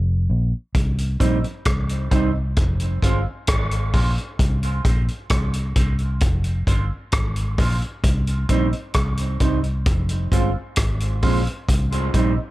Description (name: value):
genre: dub reggae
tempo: 66 BPM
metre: 4/4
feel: straight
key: C minor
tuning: A4 = 444 Hz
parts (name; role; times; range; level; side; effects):
- vintage muted fingered electric bass; bass; 0.0-12.4 s; F1 to C2; -21 LUFS; equal; none
- vintage drum kit; drums; 0.7-12.4 s; hi-hat, kick drum, rim click; -22 LUFS; equal; none
- congas; percussion; 0.7-1.0 s; none; -36 LUFS; right 5 dB; none
- mellow electric guitar; accompaniment; 1.2-12.3 s; G3 to F4; -27 LUFS; right 3 dB; high-pass filter, dub echo
room: small room ambience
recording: none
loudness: -18 LUFS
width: side -17 dB against mid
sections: 0.7-12.5 A section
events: break 0.0-0.7; part muted 0.7-12.5; filter sweep 0.7-8.0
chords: 0.0 Fsus4; 0.7 Cm; 2.6 Fm; 4.4 Cm; 6.2 Fm; 8.0 Cm; 9.9 Fm; 11.7 Cm